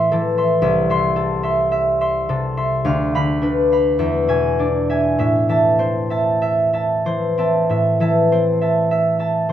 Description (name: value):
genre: classical, solo harp piece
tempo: 46-57 BPM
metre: 4/4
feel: rubato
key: A minor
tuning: A4 = 441 Hz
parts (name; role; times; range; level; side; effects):
- concert harp; solo; 0.0-9.5 s; C2 to C6; -16 LUFS; equal; none
room: moderate recital hall reverb, RT60 1.8 s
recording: close, detailed microphones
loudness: -16 LUFS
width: side -11 dB against mid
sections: 0.0-9.5 A section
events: none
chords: 0.0 Am; 0.6 Am/C; 2.8 Bdim/D; 4.0 E7; 5.2 Am